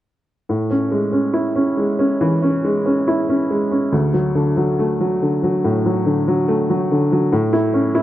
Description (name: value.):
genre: pop.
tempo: 70 BPM.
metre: 4/4.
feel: straight.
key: A major.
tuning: A4 = 438 Hz.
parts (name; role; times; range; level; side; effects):
clear upright piano; solo; 0.5-8.0 s; D2 to E4; -16 LUFS; equal; tape echo.
room: moderate lush hall reverb, RT60 2.6 s.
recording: rough home demo mix.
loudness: -16 LUFS.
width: side -13 dB against mid.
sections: 0.5-8.0 A section.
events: none.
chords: 0.5 Amaj7; 3.9 D; 7.3 A.